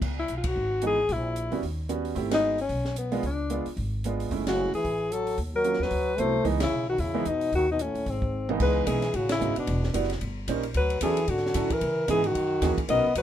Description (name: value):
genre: jazz, small-group swing and bop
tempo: 224 BPM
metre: 4/4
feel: swing 58% on 8ths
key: C# minor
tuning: A4 = 441 Hz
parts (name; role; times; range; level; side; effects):
- upright bass; bass; 0.0-13.2 s; E1 to C#3; -31 LUFS; equal; none
- compact cocktail drum kit; drums; 0.0-13.2 s; crash cymbal, hi-hat, kick drum, ride cymbal, snare drum, toms; -35 LUFS; equal; none
- mellow alto saxophone; melody; 0.2-13.2 s; B3 to D#5; -27 LUFS; left 3 dB; none
- clear upright piano; accompaniment; 0.8-13.0 s; C#2 to B#4; -30 LUFS; right 6 dB; none
- warm trombone; second line; 4.5-13.2 s; G#2 to B3; -32 LUFS; right 3 dB; none
room: light reverb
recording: minimal, uncompressed stereo recording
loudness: -24 LUFS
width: side -10 dB against mid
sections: 0.0-8.6 A section; 8.6-13.2 B section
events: band accent 0.4, 2.3, 4.4, 6.6, 9.3; drum fill 8.3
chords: 0.0 C#m9; 1.1 A#dim; 1.6 D#7alt; 2.2 G#m7; 3.2 C#7b9; 4.3 F#m9; 5.4 D#m9; 5.9 D13; 6.5 C#m9; 7.5 D#m7b5; 8.1 G#; 8.6 C#m7; 9.7 Em9; 10.2 D#7; 10.7 Dmaj9; 11.8 C#m9; 12.4 F#13